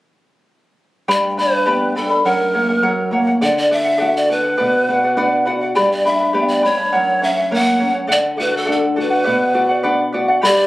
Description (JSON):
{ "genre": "andean folk, Andean ensemble", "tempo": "103 BPM", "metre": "2/4", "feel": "straight", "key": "B minor", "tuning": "A4 = 443 Hz", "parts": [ { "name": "breathy polished pan flute", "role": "melody", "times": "1.1-10.7 s", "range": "A4 to F#5", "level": "-17 LUFS", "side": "right 1 dB", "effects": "none" }, { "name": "charango", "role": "accompaniment", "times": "1.1-10.7 s", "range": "G4 to B5", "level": "-18 LUFS", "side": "equal", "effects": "none" }, { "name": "nylon-string guitar", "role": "accompaniment", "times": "1.1-10.7 s", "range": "F#2 to F#5", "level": "-20 LUFS", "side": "left 1 dB", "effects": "none" }, { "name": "breathy mellow large quena", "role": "second line", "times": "10.4-10.7 s", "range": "G4 to A4", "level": "-19 LUFS", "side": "left 1 dB", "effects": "none" } ], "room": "wet small room reverb, RT60 0.6 s", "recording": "recorded on a phone in the room, club reverb, compression", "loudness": "-14 LUFS", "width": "side -17 dB against mid", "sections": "1.1-10.4 A section", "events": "nylon-string guitar fill 4.9-5.8", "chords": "1.1 G; 2.2 F#; 3.4 D; 4.6 Bm; 5.8 G; 6.9 F#; 8.1 D; 9.3 Bm" }